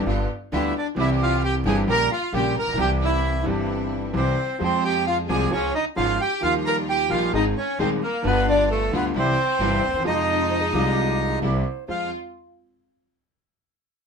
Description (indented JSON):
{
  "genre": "tango",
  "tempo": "132 BPM",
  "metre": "4/4",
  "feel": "rubato",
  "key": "F minor",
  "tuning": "A4 = 440 Hz",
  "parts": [
    { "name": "clear concert grand piano", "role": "accompaniment", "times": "0.0-12.1 s", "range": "Eb1 to Ab4", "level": "-25 LUFS", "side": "equal", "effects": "none" },
    { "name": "clear studio string section", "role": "stabs", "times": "0.0-12.1 s", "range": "G3 to G4", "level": "-33 LUFS", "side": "equal", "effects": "none" },
    { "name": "upright bass", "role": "bass", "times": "0.0-12.1 s", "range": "G1 to F2", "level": "-27 LUFS", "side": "equal", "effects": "none" },
    { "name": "bandoneon", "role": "melody", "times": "0.5-12.1 s", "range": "A3 to Bb5", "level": "-24 LUFS", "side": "right 2 dB", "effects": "none" },
    { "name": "warm studio violin section", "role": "second line", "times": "0.5-12.1 s", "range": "A3 to Bb4", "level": "-29 LUFS", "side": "left 2 dB", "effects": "none" },
    { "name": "mellow hollow silver concert flute", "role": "second line", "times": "10.5-12.1 s", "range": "G4 to C5", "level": "-32 LUFS", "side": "right 6 dB", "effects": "none" }
  ],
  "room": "moderate studio ambience, RT60 0.5 s",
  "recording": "minimal, uncompressed stereo recording",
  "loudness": "-20 LUFS",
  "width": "side -6 dB against mid",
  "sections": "0.0-11.9 A section; 11.9-13.7 B section",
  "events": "none",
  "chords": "0.1 G7; 1.0 C; 1.9 Gdim/Bb; 2.8 C; 4.6 Fm; 5.5 Db; 6.4 Ebadd9; 7.3 Ab; 8.2 G7; 9.1 C; 10.0 Fm; 11.4 C7; 11.9 Fm",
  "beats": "0.07 0.52 | 0.97 1.42 1.88 2.33 | 2.78 3.24 3.69 4.15 | 4.61 5.07 5.52 5.98 | 6.43 6.89 7.34 7.79 | 8.24 8.69 9.14 9.59 | 10.05 10.50 10.96 11.42 | 11.88"
}